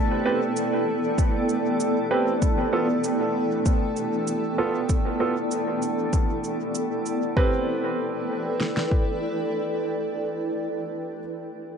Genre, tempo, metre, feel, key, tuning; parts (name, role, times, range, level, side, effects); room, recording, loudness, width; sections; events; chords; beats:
ambient dub; 97 BPM; 4/4; swing 53% on 16ths; A minor; A4 = 440 Hz
granular cloud pad; sustained chords; 0.0-10.6 s; B3 to G5; -25 LUFS; equal; built-in reverb
drifting glass-harmonics texture; texture; 0.0-7.4 s; A3 to A4; -31 LUFS; equal; chorus, built-in reverb
bright upright piano; stabs; 0.3-11.2 s; B3 to B4; -29 LUFS; right 4 dB; low-pass filter, dub echo
cabasa; drums; 0.6-7.2 s; -39 LUFS; right 6 dB; studio ambience, dub echo
deep house drum kit; drums; 1.2-9.1 s; kick drum, snare drum; -23 LUFS; equal; studio ambience
moderate spring reverb, RT60 1.2 s, digital ambience; echo-heavy mix, nothing above 10.5 kHz; -22 LUFS; side -7 dB against mid
0.0-7.4 A section; 7.4-9.8 B section
0.0 Am7; 2.4 G; 7.4 Am7
0.56 1.18 1.80 | 2.42 3.04 3.65 4.27 | 4.89 5.51 6.13 6.75 | 7.37 7.98 8.60 9.22